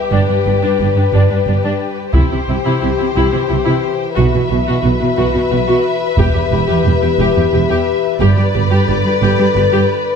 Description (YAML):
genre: cinematic, epic orchestral film score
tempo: 59 BPM (dotted quarters)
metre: 6/8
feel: straight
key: unclear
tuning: A4 = 440 Hz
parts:
  - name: warm symphonic violin section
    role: melody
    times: 0.0-10.2 s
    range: B4 to E5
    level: -23 LUFS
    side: left 5 dB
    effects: none
  - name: warm symphonic violin section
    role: second line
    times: 0.0-10.2 s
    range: G4 to B4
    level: -21 LUFS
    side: left 5 dB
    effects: none
  - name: dark French horn section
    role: sustained chords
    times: 0.0-10.2 s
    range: D3 to B4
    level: -19 LUFS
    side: left 8 dB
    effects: none
  - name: rich symphonic viola section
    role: accompaniment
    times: 0.1-9.9 s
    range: D4 to G4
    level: -21 LUFS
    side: equal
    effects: none
  - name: rich symphonic double bass section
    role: bass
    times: 0.1-9.6 s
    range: E1 to C2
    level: -19 LUFS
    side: right 4 dB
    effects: none
  - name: warm symphonic cello section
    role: bass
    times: 0.1-9.8 s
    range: E2 to C3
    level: -17 LUFS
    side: right 3 dB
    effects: none
  - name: taiko ensemble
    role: drums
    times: 2.1-7.5 s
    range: none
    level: -17 LUFS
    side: left 1 dB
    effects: none
room: moderate scoring stage reverb, RT60 1.7 s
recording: dark, warm production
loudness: -12 LUFS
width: side -6 dB against mid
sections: 0.0-10.2 A section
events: build-up 0.0-10.2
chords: 0.1 G; 2.1 C; 4.2 Bsus4; 6.2 Em; 8.2 G